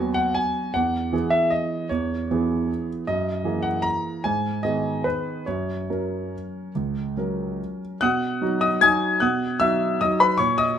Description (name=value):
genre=classical, piano waltz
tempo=136-164 BPM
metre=3/4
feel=rubato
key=B major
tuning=A4 = 444 Hz
part: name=warm concert grand piano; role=solo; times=0.0-10.8 s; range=C#2 to G#6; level=-21 LUFS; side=equal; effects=none
room=light reverb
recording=lossy compression artefacts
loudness=-21 LUFS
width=side -9 dB against mid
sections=0.0-8.0 A section; 8.0-10.8 B section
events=none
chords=0.0 B/D#; 0.8 C#m7/E; 3.1 F#13; 4.2 G#m; 5.5 F#; 8.0 B